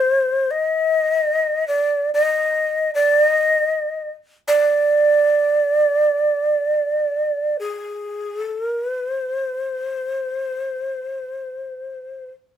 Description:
japanese traditional, Japanese chamber music; free time; C hirajoshi; A4 = 440 Hz
breathy mellow shakuhachi; solo; 0.0-12.3 s; C5 to Eb5; -18 LUFS; right 1 dB
light reverb; minimal, uncompressed stereo recording; -17 LUFS; side -9 dB against mid
0.0-12.6 A section

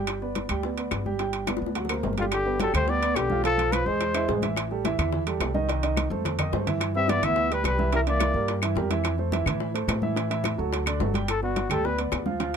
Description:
Afro-Cuban jazz; 214 BPM; 4/4; straight; G major; A4 = 440 Hz
warm grand piano; accompaniment; 0.0-12.6 s; D3 to G5; -29 LUFS; right 4 dB
upright bass; bass; 0.0-12.6 s; G1 to A2; -29 LUFS; left 1 dB
bongos; percussion; 0.1-12.6 s; -35 LUFS; left 9 dB
claves; percussion; 0.1-12.3 s; -36 LUFS; left 9 dB
congas; percussion; 0.1-12.6 s; -34 LUFS; left 1 dB
timbales; percussion; 0.1-12.6 s; -33 LUFS; right 7 dB
breathy trumpet; melody; 2.2-4.4, 7.0-8.6, 11.3-12.0 s; F4 to E5; -26 LUFS; left 4 dB
warm trombone; second line; 2.2-4.4, 7.0-8.6 s; D3 to C4; -32 LUFS; right 6 dB
little or no reverb; close, detailed microphones; -23 LUFS; side -7 dB against mid
0.0-2.3 A section; 2.3-11.3 B section; 11.3-12.6 C section
drum fill 1.5-2.3, 6.0-6.8; trumpet solo 11.3-12.6
0.1 G; 1.8 Daug7; 2.3 G; 3.4 Fmaj7#11/B; 4.0 Eaug; 4.6 Am7; 5.7 Cm; 6.2 F9; 6.8 G6; 7.9 C7; 9.0 Fmaj7; 10.2 A5; 10.7 D; 11.3 Gmaj7

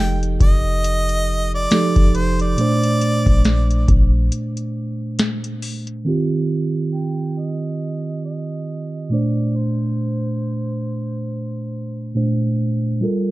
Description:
contemporary R&B; 69 BPM; 4/4; swing 58% on 16ths; A4 = 439 Hz
bright harmonica; melody; 0.0-12.2 s; C5 to G5; -26 LUFS; right 1 dB; slapback echo
mellow tine electric piano; accompaniment; 0.0-13.3 s; Bb2 to Eb5; -21 LUFS; right 2 dB
warm 808-style bass; bass; 0.0-4.3 s; F1 to Bb1; -19 LUFS; equal
booming analog drum machine; drums; 0.2-6.0 s; hi-hat, kick drum, snare drum; -18 LUFS; equal
little or no reverb; dark, warm production, low-pass filter; -18 LUFS; side -18 dB against mid
0.0-6.1 A section; 6.1-13.3 B section
break 4.3-6.1; filter sweep 6.1-13.3
0.0 F9; 2.6 Bbmaj9; 6.1 Eb69; 9.1 Bbmaj9

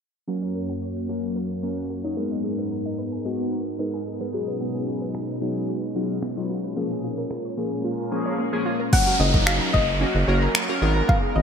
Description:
dance-pop; 111 BPM; 4/4; straight; A4 = 441 Hz
chorused polysynth; accompaniment; 0.3-11.4 s; E#3 to A#4; -28 LUFS; left 2 dB; sidechain pumping
sweeping resonant pad; sustained chords; 0.3-11.4 s; F#2 to C#5; -30 LUFS; equal; chorus, sidechain pumping
wide unison pluck; arpeggios; 0.3-11.4 s; A#3 to F#6; -34 LUFS; right 4 dB; sidechain pumping, ping-pong delay
minimal click drum kit; drums; 5.1-11.2 s; crash cymbal, finger snaps, kick drum; -22 LUFS; equal; gated reverb
soft round pluck; melody; 8.9-11.4 s; C#5 to F#5; -26 LUFS; left 2 dB; chorus
downlifter; sound effects; 8.9-11.4 s; -27 LUFS; equal
round analog bass; bass; 9.2-11.4 s; F#1 to G#1; -22 LUFS; equal; sidechain pumping
moderate lush hall reverb, RT60 2.0 s; bright 1980s-style digital production, low-pass filter; -22 LUFS; side -7 dB against mid
0.3-8.9 A section; 8.9-11.4 B section
filter sweep 0.3-8.9
0.3 F#; 2.2 G#madd9; 4.3 B6; 6.8 A#m7; 8.9 F#; 10.8 G#madd9

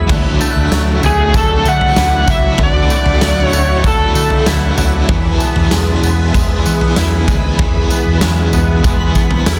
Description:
dream pop; 96 BPM; 4/4; straight; D lydian; A4 = 440 Hz
string machine, violins; sustained chords; 0.0-9.6 s; F#4 to B5; -26 LUFS; equal; ensemble chorus
semi-hollow electric guitar; arpeggios; 0.0-9.6 s; D3 to G#4; -23 LUFS; equal; ensemble chorus, delay
vintage muted fingered electric bass; bass; 0.0-9.6 s; C#2 to E3; -19 LUFS; equal
twinkling granular texture; texture; 0.0-8.9 s; E5 to B5; -31 LUFS; equal
biting overdriven guitar; accompaniment; 0.1-9.6 s; E2 to G#4; -23 LUFS; equal; tremolo, lush chorus
huge arena drum kit; drums; 0.1-9.6 s; crash cymbal, kick drum, snare drum, tambourine, toms; -18 LUFS; equal
overdriven slide guitar; melody; 1.1-4.4 s; G#4 to F#5; -18 LUFS; equal; delay
moderate lush hall reverb, RT60 1.9 s, small room ambience; dense, heavily limited modern master; -13 LUFS; mono
0.1-9.6 A section
0.1 Dadd9; 5.1 E

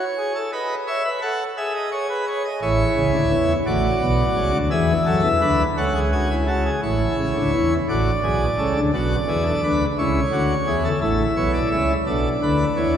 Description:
classical, baroque-style 3-part fugue for pipe organ; 57 BPM (dotted quarters); 6/8; straight; A major; A4 = 440 Hz
pipe organ, plenum; solo; 0.0-13.0 s; A1 to A5; -18 LUFS; equal
wet church reverb, RT60 3.7 s; recorded in a church or concert hall; -18 LUFS; side -9 dB against mid
0.0-6.8 A section; 6.8-13.0 B section
0.0 F#m (rootless); 0.5 B7; 1.6 E/G#; 2.6 A; 3.7 Bm7/A; 4.7 E7; 5.8 A/C#; 6.8 A; 7.9 D/A; 8.9 G#dim/B; 10.0 C#m; 11.0 A; 12.1 Bm

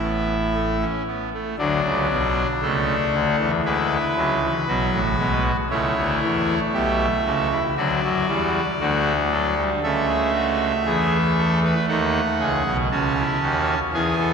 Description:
classical, baroque-style 4-part fugue for pipe organ; 58 BPM; 4/4; straight; D major; A4 = 441 Hz
pipe organ, trumpet; solo; 0.0-14.3 s; A1 to A5; -19 LUFS; equal
wet cathedral reverb, RT60 4.3 s; minimal, uncompressed stereo recording; -19 LUFS; side -6 dB against mid
0.0-1.6 A section; 1.6-14.3 B section
0.0 A; 1.6 D; 3.6 E7; 5.7 A/C#; 7.8 D; 9.8 A/C#; 11.9 B7

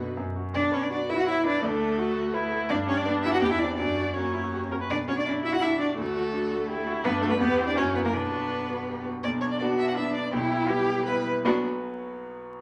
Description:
quick classical-period movement for piano quartet; 165 BPM; 3/4; straight; B minor; A4 = 440 Hz
rich violin; melody; 0.0-11.7 s; D4 to G5; -34 LUFS; equal
rich cello; second line; 0.0-11.7 s; B2 to B4; -30 LUFS; equal
warm grand piano; accompaniment; 0.0-12.6 s; B1 to C#5; -33 LUFS; equal
warm viola; accompaniment; 0.0-11.7 s; D4 to B4; -34 LUFS; equal
wet large studio reverb, RT60 0.9 s; vinyl crackle; -27 LUFS; mono
0.5-9.2 A section; 9.2-11.4 B section; 11.4-12.6 C section
0.2 F#5; 0.5 Bm; 1.6 D; 2.7 G; 3.4 C/E; 3.8 F#; 4.9 Bm; 6.0 D; 7.0 Gmaj7; 7.4 C/E; 7.8 F#7; 8.1 Bm; 10.3 Em/B; 11.4 B5

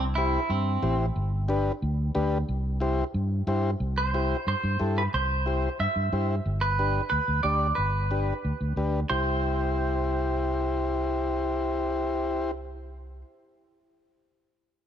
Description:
latin, cumbia; 181 BPM; 4/4; straight; C major; A4 = 440 Hz
clean electric guitar; melody; 0.0-1.0, 4.0-13.2 s; C4 to E5; -29 LUFS; right 2 dB; spring reverb
fingered electric bass; bass; 0.0-13.2 s; G1 to G2; -28 LUFS; equal
overdriven combo organ; accompaniment; 0.2-12.5 s; D4 to D5; -30 LUFS; left 2 dB
light reverb; -24 LUFS; side -9 dB against mid
0.0-3.8 A section; 3.8-9.1 B section; 9.1-11.8 C section
0.0 C; 1.2 G; 2.5 C; 6.4 G; 9.1 C

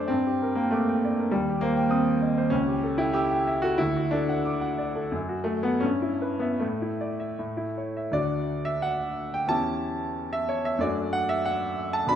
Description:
classical, romantic character piece for solo piano; 75-102 BPM; 2/4; rubato; D major; A4 = 440 Hz
bright grand piano; solo; 0.0-12.2 s; C#2 to E6; -24 LUFS; equal
wet recital hall reverb, RT60 1.6 s; -24 LUFS; side -9 dB against mid
0.0-8.1 A section; 8.1-12.2 B section
0.1 Gm; 1.3 Cm/Eb; 2.5 A7/C#; 3.8 D; 5.1 F#madd11; 5.8 Em/G; 6.6 Asus4; 7.4 A; 8.1 D; 9.5 A7/E; 10.8 D/F#

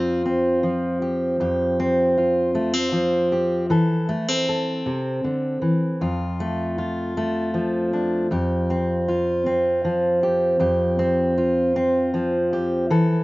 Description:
folk; 52 BPM (dotted quarters); 6/8; straight; F major; A4 = 440 Hz
fingerpicked steel-string acoustic guitar; solo; 0.0-13.2 s; F2 to A4; -19 LUFS; equal
little or no reverb; recorded outdoors, with no room sound, nothing above 7.6 kHz; -19 LUFS; side -20 dB against mid
0.0-13.2 A section
0.0 Fsus2; 3.7 Am/E; 6.0 Dm/F; 8.3 Fsus2

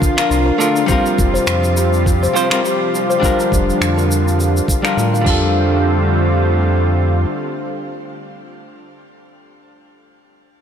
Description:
sunset chillout; 103 BPM; 4/4; swing 56% on 16ths; F major; A4 = 440 Hz
lush unison pad; sustained chords; 0.0-8.6 s; C3 to F4; -20 LUFS; right 1 dB; chorus, vintage 12-bit sampler grit, shimmer reverb
kalimba; arpeggios; 0.0-5.8 s; D4 to F5; -21 LUFS; left 3 dB; vintage 12-bit sampler grit, low-pass filter, tape echo, shimmer reverb
electronic kick drum; drums; 0.0-5.4 s; -18 LUFS; equal
soft brush drum kit; drums; 0.0-5.4 s; crash cymbal, finger snaps, shaker; -23 LUFS; right 1 dB
archtop guitar, miked and amplified; accompaniment; 0.2-9.3 s; G3 to C5; -20 LUFS; left 1 dB; auto-pan, low-pass filter, tape echo, shimmer reverb
round analog bass; bass; 0.3-7.3 s; F1 to A2; -16 LUFS; equal
moderate lush hall reverb, RT60 2.5 s; -13 LUFS; side -8 dB against mid
0.0-5.6 A section; 5.6-7.9 B section
0.0 Bbmaj7; 0.9 C7sus4/F; 3.2 Gm7/F; 5.3 F69

